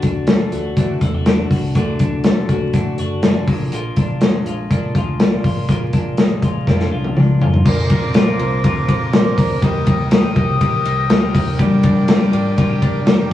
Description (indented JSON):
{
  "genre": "jangly indie pop",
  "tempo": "122 BPM",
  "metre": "4/4",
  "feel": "straight",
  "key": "Bb mixolydian",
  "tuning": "A4 = 440 Hz",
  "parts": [
    { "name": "fingerpicked steel-string acoustic guitar", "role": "accompaniment", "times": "0.0-13.3 s", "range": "G2 to D5", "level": "-26 LUFS", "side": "right 2 dB", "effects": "none" },
    { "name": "twelve-string electric guitar", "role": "arpeggios", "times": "0.0-13.3 s", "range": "Bb2 to G4", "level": "-23 LUFS", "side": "left 3 dB", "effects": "none" },
    { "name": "vintage muted fingered electric bass", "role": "bass", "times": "0.0-13.2 s", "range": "F#1 to D3", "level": "-25 LUFS", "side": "equal", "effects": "none" },
    { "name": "modern studio drum kit", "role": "drums", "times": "0.0-13.2 s", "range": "crash cymbal, hi-hat, kick drum, ride cymbal, snare drum, toms", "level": "-15 LUFS", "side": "left 1 dB", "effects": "none" },
    { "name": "combo organ", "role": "accompaniment", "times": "7.6-13.3 s", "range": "D4 to C5", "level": "-29 LUFS", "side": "right 2 dB", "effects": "phaser" },
    { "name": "warm woodwind section", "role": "sustained chords", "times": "7.6-13.3 s", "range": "Bb4 to Eb6", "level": "-24 LUFS", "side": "left 2 dB", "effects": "none" }
  ],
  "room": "light reverb",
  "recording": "rough rehearsal-room recording, vinyl crackle, small room ambience",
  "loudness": "-14 LUFS",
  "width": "side -12 dB against mid",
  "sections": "0.0-7.7 A section; 7.7-13.3 B section",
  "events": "drum fill 6.7-7.7",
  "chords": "0.0 Dadd9; 3.5 Bb7; 7.7 Bbadd9; 9.6 Eb; 11.6 Gm",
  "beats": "0.28 0.77 1.26 | 1.75 2.25 2.74 3.23 | 3.72 4.21 4.71 5.20 | 5.69 6.18 6.67 7.17 | 7.66 8.15 8.64 9.13 | 9.62 10.12 10.61 11.10 | 11.59 12.08 12.57 13.07"
}